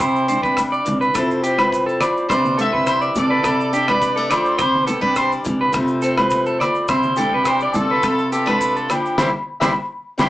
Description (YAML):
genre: highlife guitar band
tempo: 105 BPM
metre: 4/4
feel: straight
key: C major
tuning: A4 = 442 Hz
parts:
  - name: warm horn section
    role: melody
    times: 0.0-10.3 s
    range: C4 to E5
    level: -22 LUFS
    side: equal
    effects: none
  - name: picked acoustic archtop guitar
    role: accompaniment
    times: 0.0-10.3 s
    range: C3 to E4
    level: -24 LUFS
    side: left 1 dB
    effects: none
  - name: electric guitar at the edge of break-up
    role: arpeggios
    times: 0.0-10.3 s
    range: E4 to D5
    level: -20 LUFS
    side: right 1 dB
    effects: none
  - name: upright bass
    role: bass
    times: 0.0-10.3 s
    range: C2 to C3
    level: -24 LUFS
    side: equal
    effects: none
  - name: damped 70s drum kit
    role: drums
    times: 0.0-10.3 s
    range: hi-hat, kick drum, rim click, snare drum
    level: -26 LUFS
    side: equal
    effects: none
  - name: agogo bells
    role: percussion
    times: 0.0-10.3 s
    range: none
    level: -24 LUFS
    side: left 2 dB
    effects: none
  - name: maracas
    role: percussion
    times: 0.0-10.3 s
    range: none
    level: -39 LUFS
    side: right 3 dB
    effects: none
  - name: congas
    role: percussion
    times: 0.3-10.3 s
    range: none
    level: -28 LUFS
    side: equal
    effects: none
room: wet studio ambience, RT60 0.5 s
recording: band playing live in one room, small speaker sound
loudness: -16 LUFS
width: side -15 dB against mid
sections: 0.0-10.3 A section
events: band accent 9.2-10.3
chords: 0.0 Cadd9; 1.2 Fmaj7/C; 2.3 Cadd9; 3.4 Dm/C; 4.6 Cadd9; 5.7 F/C; 6.9 Cadd9